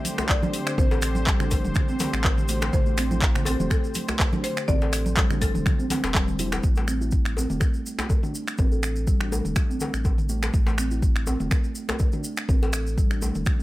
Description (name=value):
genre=afro house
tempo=123 BPM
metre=4/4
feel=swing 55% on 16ths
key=A minor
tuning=A4 = 440 Hz
part: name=buzzing marimba with medium hard mallets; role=melody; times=0.0-6.4 s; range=A4 to E5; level=-34 LUFS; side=left 3 dB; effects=tape echo
part: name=warm analog pad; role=sustained chords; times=0.0-6.6 s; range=D3 to C5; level=-34 LUFS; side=left 1 dB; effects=chorus, tremolo, sidechain pumping
part: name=afro-pop drum kit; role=drums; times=0.0-13.6 s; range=finger snaps, handclaps, hi-hat, toms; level=-29 LUFS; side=equal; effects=none
part: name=congas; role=percussion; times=0.0-6.5 s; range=none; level=-32 LUFS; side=right 3 dB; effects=none
part: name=maracas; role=percussion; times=0.1-13.6 s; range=none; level=-38 LUFS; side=equal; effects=none
part: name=kalimba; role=arpeggios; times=0.2-13.6 s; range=E3 to A4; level=-30 LUFS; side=right 1 dB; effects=vintage 12-bit sampler grit, sidechain pumping, low-pass filter, tape echo
part: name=djembe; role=percussion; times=0.2-13.3 s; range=none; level=-33 LUFS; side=left 2 dB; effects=none
part: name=electronic kick drum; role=drums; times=0.3-13.6 s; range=none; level=-23 LUFS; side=equal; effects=none
part: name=warm sub bass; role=bass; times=0.8-13.4 s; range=E1 to A1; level=-27 LUFS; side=equal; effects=sidechain pumping
room=small room ambience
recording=none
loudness=-21 LUFS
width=side -17 dB against mid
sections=0.0-6.6 A section; 6.6-13.6 B section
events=drop 0.0-6.6; filter sweep on kalimba 6.6-13.6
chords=0.0 Am7; 6.6 N.C.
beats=0.29 | 0.78 1.27 1.76 2.25 | 2.73 3.22 3.71 4.20 | 4.68 5.17 5.66 6.15 | 6.63 7.12 7.61 8.10 | 8.59 9.07 9.56 10.05 | 10.54 11.03 11.51 12.00 | 12.49 12.98 13.46